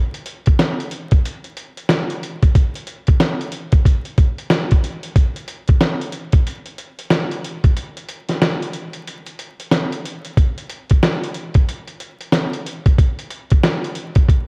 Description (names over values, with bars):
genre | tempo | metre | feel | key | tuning
hip hop | 92 BPM | 4/4 | swing 62% on 16ths | none | none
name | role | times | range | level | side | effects
dusty soul sampler-style drum kit | drums | 0.1-14.5 s | hi-hat, kick drum, snare drum | -18 LUFS | equal | none
room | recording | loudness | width
light reverb | worn, warbling old tape, cassette tape, vinyl crackle, warbly pitch drift | -18 LUFS | mono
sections
0.0-14.5 A section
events
break 7.8-10.4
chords
none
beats
0.59 1.24 1.90 | 2.55 3.20 3.85 4.50 | 5.16 5.81 6.46 7.11 | 7.76 8.42 9.07 9.72 | 10.37 11.03 11.68 12.33 | 12.98 13.63 14.29